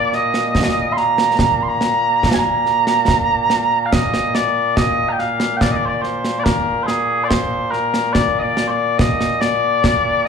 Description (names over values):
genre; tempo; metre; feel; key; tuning
scottish traditional, Scottish pipe music; 71 BPM; 3/4; straight; Bb major; A4 = 441 Hz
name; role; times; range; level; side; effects
mellow small bagpipes; melody; 0.0-10.3 s; Bb2 to C6; -16 LUFS; equal; plate reverb, slapback echo
concert snare drum and concert bass drum; drums; 0.1-10.0 s; none; -20 LUFS; right 1 dB; none
room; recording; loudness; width
moderate club ambience, RT60 0.5 s; live gig heard through the venue's PA, club reverb; -15 LUFS; side -6 dB against mid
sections
0.0-3.9 A section; 3.9-10.3 A section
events
none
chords
none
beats
0.55 | 1.40 2.24 3.09 | 3.93 4.78 5.62 | 6.47 7.31 8.16 | 9.00 9.85